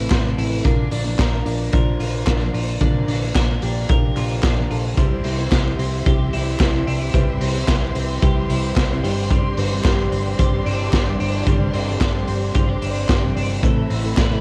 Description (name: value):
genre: jangly indie pop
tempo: 111 BPM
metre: 4/4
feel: straight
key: C major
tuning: A4 = 440 Hz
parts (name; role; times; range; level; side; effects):
- picked steel-string acoustic guitar; accompaniment; 0.0-14.4 s; G2 to C5; -32 LUFS; equal; cassette tape
- soft electric-piano-like synth keys; accompaniment; 0.0-14.4 s; C4 to D5; -31 LUFS; equal; chorus, cassette tape
- twelve-string electric guitar; arpeggios; 0.0-14.4 s; G3 to B4; -31 LUFS; equal; analog chorus, cassette tape
- vintage muted fingered electric bass; bass; 0.0-14.4 s; G1 to C2; -26 LUFS; equal; none
- raw garage drum kit; drums; 0.1-14.3 s; hi-hat, kick drum, ride cymbal, snare drum; -22 LUFS; equal; none
- group handclap; percussion; 0.1-14.3 s; none; -37 LUFS; equal; none
- warm studio string section; sustained chords; 5.0-14.4 s; C4 to C6; -33 LUFS; equal; cassette tape
room: light reverb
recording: home recording on cassette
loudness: -20 LUFS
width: mono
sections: 0.0-14.4 A section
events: none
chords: 0.0 Amadd9; 0.7 Bb; 5.0 C; 9.0 Gsus4; 13.6 Amadd9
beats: 0.11 | 0.65 1.19 1.73 2.27 | 2.81 3.35 3.90 4.44 | 4.98 5.52 6.06 6.60 | 7.14 7.68 8.22 8.76 | 9.30 9.85 10.39 10.93 | 11.47 12.01 12.55 13.09 | 13.63 14.18